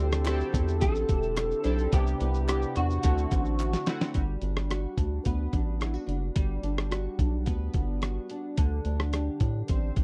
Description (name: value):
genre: indie pop, bedroom pop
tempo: 108 BPM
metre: 4/4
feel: straight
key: G major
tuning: A4 = 439 Hz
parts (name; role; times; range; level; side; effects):
- electric guitar at the edge of break-up; melody; 0.0-3.8 s; F#4 to A4; -34 LUFS; equal; ensemble chorus, slapback echo
- chorused retro synth keys; accompaniment; 0.0-4.2 s; A3 to A4; -38 LUFS; equal; cassette tape
- nylon-string guitar; accompaniment; 0.0-10.0 s; C3 to G4; -37 LUFS; equal; analog chorus, warbly pitch drift
- round analog bass; bass; 0.0-10.0 s; E1 to A2; -31 LUFS; equal; none
- dusty soul sampler-style drum kit; drums; 0.1-10.0 s; hi-hat, kick drum, rim click, shaker, snare drum; -30 LUFS; equal; none
- group handclap; percussion; 0.3-3.7 s; none; -47 LUFS; equal; none
room: little or no reverb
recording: dry, close 1970s-style studio recording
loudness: -28 LUFS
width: mono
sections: 0.0-4.1 A section; 4.1-10.0 B section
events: drum fill 3.6-4.1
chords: 0.0 D9sus4; 1.9 Cmaj9; 3.0 D7; 4.1 Gmaj7; 8.6 D7sus4